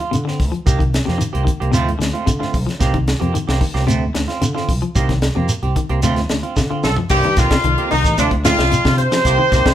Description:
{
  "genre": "afrobeat",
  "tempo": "112 BPM",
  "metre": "4/4",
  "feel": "straight",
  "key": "C dorian",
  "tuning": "A4 = 436 Hz",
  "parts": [
    { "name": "semi-hollow electric guitar", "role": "stabs", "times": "0.0-9.7 s", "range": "Eb3 to G4", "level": "-24 LUFS", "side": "right 6 dB", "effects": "harmonic tremolo" },
    { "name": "tight funk drum kit", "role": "drums", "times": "0.0-9.7 s", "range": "crash cymbal, hi-hat, kick drum, snare drum, toms", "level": "-20 LUFS", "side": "equal", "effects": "none" },
    { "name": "clean electric guitar", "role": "arpeggios", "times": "0.1-9.7 s", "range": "C3 to F3", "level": "-25 LUFS", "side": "left 6 dB", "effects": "none" },
    { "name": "fingered electric bass", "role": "bass", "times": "0.1-9.7 s", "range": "A1 to D3", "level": "-20 LUFS", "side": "equal", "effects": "none" },
    { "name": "shekere", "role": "percussion", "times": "0.1-9.7 s", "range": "none", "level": "-23 LUFS", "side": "right 1 dB", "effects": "none" },
    { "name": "bright horn section", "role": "melody", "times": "6.8-9.7 s", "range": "D4 to C5", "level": "-17 LUFS", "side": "equal", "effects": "none" },
    { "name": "bright trombone section", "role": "second line", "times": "6.8-9.7 s", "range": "D2 to C3", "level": "-27 LUFS", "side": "equal", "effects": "none" },
    { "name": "growling trumpet", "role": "second line", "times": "6.9-9.7 s", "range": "D4 to C5", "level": "-28 LUFS", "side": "right 5 dB", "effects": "none" }
  ],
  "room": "moderate large studio reverb, RT60 0.9 s",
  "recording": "band playing live in one room",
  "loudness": "-15 LUFS",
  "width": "side -11 dB against mid",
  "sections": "0.0-7.1 A section; 7.1-9.7 B section",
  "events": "drum fill 6.6-7.1",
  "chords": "0.0 Dm7; 0.7 Cm7; 1.7 Dm7; 2.8 Cm7; 3.9 Dm7; 5.0 Cm7; 6.0 Dm7; 7.1 Cm7; 8.2 Dm7"
}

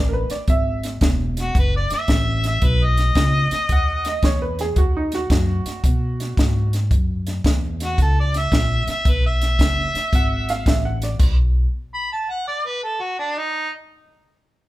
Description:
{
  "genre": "electric blues shuffle",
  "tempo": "112 BPM",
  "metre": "4/4",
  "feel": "swing 67% on 8ths",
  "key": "B mixolydian",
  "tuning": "A4 = 439 Hz",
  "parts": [
    { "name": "clear upright piano", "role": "second line", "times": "0.0-6.7, 10.2-11.2 s", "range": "D#4 to F#5", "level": "-26 LUFS", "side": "right 3 dB", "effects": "none" },
    { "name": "upright bass", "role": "bass", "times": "0.0-11.6 s", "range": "E1 to B2", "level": "-21 LUFS", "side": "equal", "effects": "none" },
    { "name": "compact cocktail drum kit", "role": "drums", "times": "0.3-11.4 s", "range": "crash cymbal, hi-hat, kick drum, snare drum", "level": "-20 LUFS", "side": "equal", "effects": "none" },
    { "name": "warm harmonica", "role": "melody", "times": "1.4-4.4, 7.8-13.7 s", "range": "D4 to B5", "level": "-23 LUFS", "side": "equal", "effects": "overdrive" }
  ],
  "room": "light reverb",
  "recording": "band playing live in one room",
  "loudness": "-18 LUFS",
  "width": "side -16 dB against mid",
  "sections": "0.0-14.7 A section",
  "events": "stop 11.2-14.7",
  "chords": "0.0 Eadd9; 2.6 Badd9; 6.9 F#7; 9.1 Eadd9; 11.2 N.C."
}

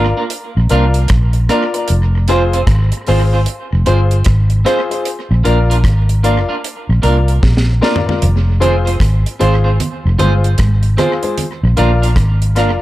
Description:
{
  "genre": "roots reggae",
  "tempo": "76 BPM",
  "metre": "4/4",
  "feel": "swing 62% on 16ths",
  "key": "F dorian",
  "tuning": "A4 = 440 Hz",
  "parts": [
    { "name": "clean electric guitar", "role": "accompaniment", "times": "0.0-12.7 s", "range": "Bb3 to C5", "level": "-20 LUFS", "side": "right 3 dB", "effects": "tape echo" },
    { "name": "warm grand piano", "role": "stabs", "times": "0.0-12.8 s", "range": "F4 to D5", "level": "-19 LUFS", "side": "left 5 dB", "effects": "none" },
    { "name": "vintage muted fingered electric bass", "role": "bass", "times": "0.0-12.8 s", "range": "F1 to C2", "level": "-12 LUFS", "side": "equal", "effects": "none" },
    { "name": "deep reggae drum kit", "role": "drums", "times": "0.3-12.8 s", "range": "hi-hat, kick drum, rim click, snare drum, toms", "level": "-19 LUFS", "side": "equal", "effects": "tape echo" },
    { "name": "congas", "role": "percussion", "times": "8.2-12.0 s", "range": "none", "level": "-22 LUFS", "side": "right 3 dB", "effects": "none" }
  ],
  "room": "light reverb, studio ambience",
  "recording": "echo-heavy mix",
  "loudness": "-11 LUFS",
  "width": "side -16 dB against mid",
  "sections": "0.0-12.8 A section",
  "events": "drum fill 7.4-8.2",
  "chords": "0.0 Bb; 1.9 Fm; 5.1 Bb; 8.2 Fm; 11.4 Bb"
}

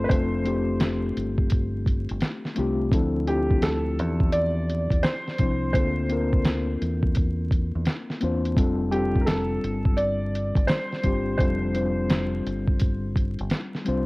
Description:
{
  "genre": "lo-fi hip hop",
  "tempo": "85 BPM",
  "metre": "4/4",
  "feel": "swing 66% on 16ths",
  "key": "F major",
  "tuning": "A4 = 439 Hz",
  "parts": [
    { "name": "felt-muted upright piano", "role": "melody", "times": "0.0-12.4 s", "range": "G4 to D5", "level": "-29 LUFS", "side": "right 1 dB", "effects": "low-pass filter, cassette tape, analog delay" },
    { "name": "mellow reed electric piano", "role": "accompaniment", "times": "0.0-14.1 s", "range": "F3 to C5", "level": "-27 LUFS", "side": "left 2 dB", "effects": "fast tremolo, cassette tape, low-pass filter" },
    { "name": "deep dub fingered electric bass", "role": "bass", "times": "0.0-14.1 s", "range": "F1 to E2", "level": "-28 LUFS", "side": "equal", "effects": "none" },
    { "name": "lo-fi sampler-style drum kit", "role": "drums", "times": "0.1-14.1 s", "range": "hi-hat, kick drum, snare drum", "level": "-23 LUFS", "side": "equal", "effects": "cassette tape" }
  ],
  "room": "light reverb",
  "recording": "home recording on cassette, vinyl crackle",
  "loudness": "-22 LUFS",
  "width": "side -22 dB against mid",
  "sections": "0.0-14.1 A section",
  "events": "none",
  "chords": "0.0 F69; 2.9 Dm9; 5.7 Bbmaj7/D; 8.6 F69"
}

